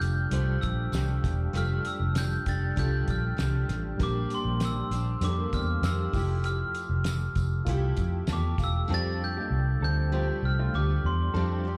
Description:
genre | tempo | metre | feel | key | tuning
indie pop, bedroom pop | 98 BPM | 4/4 | straight | F major | A4 = 440 Hz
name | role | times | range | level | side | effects
glockenspiel with soft plastic mallets | melody | 0.0-11.6 s | C6 to A6 | -37 LUFS | equal | analog chorus, slapback echo, analog delay
picked steel-string acoustic guitar | accompaniment | 0.0-11.8 s | F3 to C5 | -40 LUFS | equal | analog chorus, vibrato effect, slapback echo
reed electric piano | accompaniment | 0.0-11.8 s | F3 to A5 | -40 LUFS | equal | fast tremolo, cassette tape, slapback echo
vintage muted fingered electric bass | bass | 0.0-11.8 s | E1 to F2 | -30 LUFS | equal | none
cloth-damped thuddy drum kit | drums | 0.0-8.7 s | hi-hat, kick drum, snare drum | -34 LUFS | equal | none
tambourine | percussion | 0.0-8.7 s | none | -50 LUFS | equal | none
electric guitar through a small old amp | second line | 8.9-11.6 s | A3 to A4 | -42 LUFS | equal | analog chorus, analog delay
room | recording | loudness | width
studio reverb | live gig heard through the venue's PA, club reverb | -28 LUFS | mono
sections
0.0-8.9 A section; 8.9-11.8 B section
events
reed electric piano fill 8.0-8.9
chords
0.0 F69; 4.0 Bb69; 6.1 Fmaj9; 8.9 F69

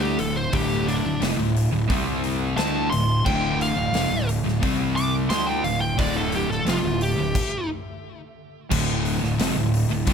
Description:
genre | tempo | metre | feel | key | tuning
stoner and doom metal | 88 BPM | 4/4 | straight | D minor | A4 = 441 Hz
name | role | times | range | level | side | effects
fuzz lead guitar | melody | 0.0-7.7 s | D4 to D6 | -27 LUFS | equal | distortion, ping-pong delay
swarming drone | sustained chords | 0.1-10.1 s | D3 to E5 | -38 LUFS | equal | none
overdriven electric guitar | riff | 0.0-10.1 s | D2 to D4 | -30 LUFS | equal | none
thick fuzz guitar | riff | 0.0-10.1 s | D2 to D4 | -27 LUFS | left 8 dB | distortion
thick fuzz guitar | riff | 0.0-10.1 s | D2 to D4 | -27 LUFS | right 8 dB | distortion
fuzz fingered electric bass | bass | 0.0-10.1 s | D1 to D2 | -29 LUFS | equal | overdrive
big rock drum kit | drums | 0.2-10.1 s | crash cymbal, hi-hat, kick drum, snare drum | -28 LUFS | equal | none
room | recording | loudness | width
small room ambience | none | -20 LUFS | side -7 dB against mid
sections
0.0-8.7 A section; 8.7-10.1 B section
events
lead electric guitar solo 0.0-8.7; stop 7.3-8.7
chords
0.0 Dm; 1.9 C5; 2.6 Dm; 4.6 C5; 5.3 Dm; 7.3 N.C.; 8.7 Dm

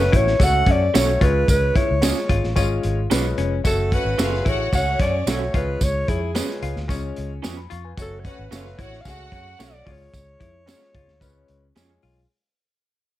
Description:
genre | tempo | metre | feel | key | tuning
uptempo 1960s-style soul | 111 BPM | 4/4 | straight | unclear | A4 = 440 Hz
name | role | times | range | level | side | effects
warm alto saxophone | melody | 0.0-11.8 s | G#4 to F#5 | -24 LUFS | right 1 dB | slapback echo
clear concert grand piano | accompaniment | 0.0-12.2 s | G#3 to C#6 | -29 LUFS | left 4 dB | none
vintage muted fingered electric bass | bass | 0.0-12.2 s | E#1 to F#2 | -24 LUFS | equal | none
crunchy breakbeat drum kit | drums | 0.0-12.2 s | hi-hat, kick drum, snare drum | -22 LUFS | equal | none
vintage hollow-body jazz guitar | riff | 0.1-12.2 s | C#4 to F#4 | -29 LUFS | left 9 dB | none
tambourine | percussion | 0.4-11.9 s | none | -32 LUFS | right 6 dB | none
electric guitar through a small old amp | stabs | 0.9-11.9 s | C#4 to C#5 | -28 LUFS | right 10 dB | warbly pitch drift
warm studio string section | second line | 3.9-9.8 s | C#4 to F#5 | -32 LUFS | equal | none
room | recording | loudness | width
light reverb | none | -18 LUFS | side -14 dB against mid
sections
0.0-12.3 A section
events
fade-out 0.0-12.3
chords
0.0 F#m; 1.2 C#; 3.6 F#m; 5.5 C#; 8.0 F#m; 9.9 C#

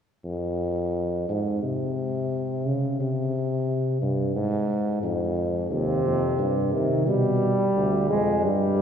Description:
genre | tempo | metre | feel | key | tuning
classical, imitative canzona for brass ensemble | 88 BPM | 4/4 | straight | F minor | A4 = 440 Hz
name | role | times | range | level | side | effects
clear tuba | bass | 0.2-8.8 s | D2 to Db3 | -24 LUFS | equal | none
dark trombone | accompaniment | 5.7-8.8 s | C3 to Ab3 | -23 LUFS | right 1 dB | none
room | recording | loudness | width
wet church reverb, RT60 2.9 s | heard from further back in the room | -23 LUFS | side -8 dB against mid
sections
0.3-8.8 A section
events
none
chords
0.3 Fm; 1.6 N.C.; 3.0 C5; 4.4 Fm/Ab; 5.7 Cm/Eb; 7.1 G/B

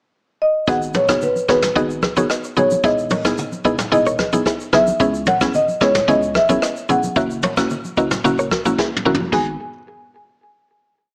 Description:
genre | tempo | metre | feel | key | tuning
afrobeats | 111 BPM | 4/4 | straight | G# minor | A4 = 439 Hz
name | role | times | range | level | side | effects
marimba with soft mallets | melody | 0.4-9.6 s | B4 to G#5 | -21 LUFS | equal | none
mallet-like synth pluck | accompaniment | 0.7-9.5 s | G#3 to G#4 | -23 LUFS | equal | chorus
direct-recorded clean electric guitar | riff | 0.7-9.5 s | E4 to E5 | -26 LUFS | equal | tape echo
punchy sub bass | bass | 0.7-9.6 s | D#1 to C#2 | -32 LUFS | equal | none
jazz brush drum kit | drums | 0.7-9.5 s | crash cymbal, hi-hat, kick drum, rim click, shaker, snare drum, toms | -26 LUFS | equal | none
congas | percussion | 1.0-9.6 s | none | -30 LUFS | equal | none
room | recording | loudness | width
light reverb | small speaker sound | -18 LUFS | mono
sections
0.0-0.7 pickup bar; 0.7-9.3 chorus; 9.3-11.1 final chord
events
drum fill 8.8-9.3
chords
0.0 N.C.; 0.7 G#m7; 2.8 Emaj7; 5.0 C#m7; 7.2 F#7; 9.3 G#m7

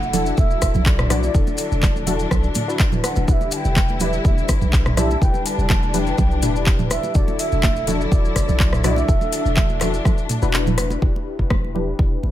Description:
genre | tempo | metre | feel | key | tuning
afro house | 124 BPM | 4/4 | straight | E minor | A4 = 440 Hz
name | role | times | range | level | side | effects
mellow bass bansuri | melody | 0.0-10.5 s | D5 to A5 | -27 LUFS | right 3 dB | ping-pong delay
rich studio string section | sustained chords | 0.0-11.0 s | D3 to E4 | -29 LUFS | left 1 dB | sidechain pumping
warm analog keys | stabs | 0.0-12.3 s | D4 to E5 | -26 LUFS | left 5 dB | chorus, sidechain pumping, low-pass filter, dub echo
warm 808-style bass | bass | 0.0-12.3 s | D1 to B1 | -22 LUFS | equal | sidechain pumping
congas | percussion | 0.0-12.3 s | none | -27 LUFS | right 6 dB | none
maracas | percussion | 0.0-11.0 s | none | -34 LUFS | left 3 dB | none
afro-pop drum kit | drums | 0.1-11.6 s | handclaps, hi-hat, rim click, toms | -24 LUFS | equal | studio reverb
electronic kick drum | drums | 0.4-12.1 s | none | -18 LUFS | equal | overdrive, studio reverb
room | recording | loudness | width
studio reverb | none | -16 LUFS | side -13 dB against mid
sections
0.0-11.0 A section; 11.0-12.3 B section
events
drop 0.0-11.0; kick drops out 10.5-11.0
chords
0.0 Dadd9/E; 3.3 Em7; 7.2 Dadd9/E; 11.0 Em7

